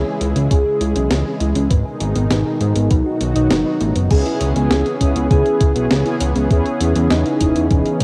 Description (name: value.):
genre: synthwave.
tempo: 100 BPM.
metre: 4/4.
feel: straight.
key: C# minor.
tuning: A4 = 440 Hz.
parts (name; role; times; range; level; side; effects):
warm velvety synth lead; melody; 0.0-8.0 s; D#4 to G#4; -24 LUFS; equal; chorus, cassette tape, tape echo.
lush unison pad; sustained chords; 0.0-8.0 s; B2 to G#4; -26 LUFS; equal; chorus, sidechain pumping, cassette tape.
thumb-piano-like synth pluck; arpeggios; 0.0-8.0 s; B3 to D#5; -28 LUFS; equal; chorus, cassette tape, tape echo.
fat analog bass; bass; 0.0-8.0 s; E1 to G#2; -21 LUFS; equal; none.
clean 12-bit digital drum machine; drums; 0.2-8.0 s; crash cymbal, hi-hat, snare drum; -25 LUFS; equal; cassette tape.
electronic kick drum; drums; 0.5-8.0 s; none; -18 LUFS; equal; cassette tape.
soft synth bell; second line; 4.1-8.0 s; D#5 to G#5; -36 LUFS; equal; none.
mellow synth brass; stabs; 4.1-8.0 s; E3 to G#4; -24 LUFS; equal; chorus, cassette tape.
room: light reverb, digital ambience.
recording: home recording on cassette.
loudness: -17 LUFS.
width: mono.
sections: 0.0-4.1 A section; 4.1-8.0 B section.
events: none.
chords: 0.0 C#m; 1.7 G#m; 2.9 B; 4.1 C#m7; 6.5 E6.